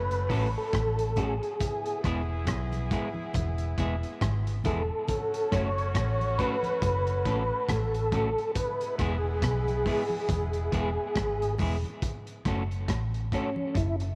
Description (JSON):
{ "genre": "roots reggae", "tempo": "69 BPM", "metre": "4/4", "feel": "swing 58% on 16ths", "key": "F# minor", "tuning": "A4 = 440 Hz", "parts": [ { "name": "mellow tonewheel organ", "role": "melody", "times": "0.0-14.0 s", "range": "C#4 to C#5", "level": "-32 LUFS", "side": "equal", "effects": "overdrive, chorus vibrato, slow rotary speaker, tape echo" }, { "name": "warm horn section", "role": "second line", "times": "0.0-11.5 s", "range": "F#3 to G#4", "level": "-43 LUFS", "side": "equal", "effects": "tape echo" }, { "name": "clean electric guitar", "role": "riff", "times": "0.0-14.0 s", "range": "E2 to B2", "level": "-41 LUFS", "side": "equal", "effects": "none" }, { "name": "vintage muted fingered electric bass", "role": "bass", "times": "0.0-14.2 s", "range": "E1 to B1", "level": "-33 LUFS", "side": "equal", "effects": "none" }, { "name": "crunchy breakbeat drum kit", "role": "drums", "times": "0.1-14.2 s", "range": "hi-hat, kick drum, rim click", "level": "-36 LUFS", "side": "equal", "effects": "none" }, { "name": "clean electric guitar", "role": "accompaniment", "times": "0.3-14.1 s", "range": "G#3 to A4", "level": "-39 LUFS", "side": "equal", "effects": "tape echo" }, { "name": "congas", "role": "percussion", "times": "0.7-14.0 s", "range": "none", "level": "-46 LUFS", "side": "equal", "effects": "none" } ], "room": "light reverb, small room ambience", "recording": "none", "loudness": "-29 LUFS", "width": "mono", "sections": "0.0-12.0 A section; 12.0-14.2 B section", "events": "tonewheel organ solo 12.0-14.2", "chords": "0.0 F#m; 1.6 E; 5.1 F#m; 8.6 E; 12.0 F#m" }